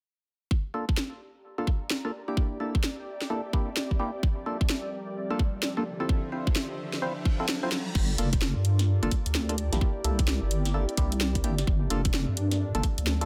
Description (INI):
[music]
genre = UK garage, two-step garage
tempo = 129 BPM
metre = 4/4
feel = swing 63% on 16ths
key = G dorian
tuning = A4 = 439 Hz
[part]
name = electronic kick drum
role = drums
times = 0.5-13.0 s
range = none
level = -28 LUFS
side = equal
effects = overdrive, studio reverb
[part]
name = ethereal airy pad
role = texture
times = 1.3-13.3 s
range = C4 to Bb5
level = -42 LUFS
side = equal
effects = ensemble chorus, built-in reverb, sidechain pumping
[part]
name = percussive organ stab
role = stabs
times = 0.7-13.3 s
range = Bb3 to C5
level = -36 LUFS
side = equal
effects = chorus, phaser, dub echo
[part]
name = garage drum kit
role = drums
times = 1.0-13.3 s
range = crash cymbal, hi-hat, snare drum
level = -33 LUFS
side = equal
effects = overdrive, studio reverb
[part]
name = warm analog pad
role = sustained chords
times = 4.2-13.3 s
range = D3 to E5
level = -42 LUFS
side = equal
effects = chorus, sidechain pumping
[part]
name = riser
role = sound effects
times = 5.9-8.0 s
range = none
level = -43 LUFS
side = equal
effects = none
[part]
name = deep soft wobble bass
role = bass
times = 8.0-13.3 s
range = F1 to G2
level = -29 LUFS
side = equal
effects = chorus, sidechain pumping
[sound]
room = digital ambience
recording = none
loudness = -28 LUFS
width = mono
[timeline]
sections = 0.5-8.0 A section; 8.0-13.3 B section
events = filter sweep on synth stab 0.5-8.0; riser 5.9-8.0; kick drops out 7.5-8.0; drum fill 7.7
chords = 0.5 Gm7; 2.4 C7; 4.2 Gm7; 5.9 Dm7; 8.0 Gm7; 9.8 C7; 11.7 Gm7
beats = | 0.51 0.97 1.44 1.91 | 2.37 2.84 3.30 3.77 | 4.23 4.70 5.16 5.63 | 6.09 6.56 7.02 7.49 | 7.95 8.42 8.88 9.35 | 9.81 10.28 10.74 11.21 | 11.67 12.14 12.60 13.07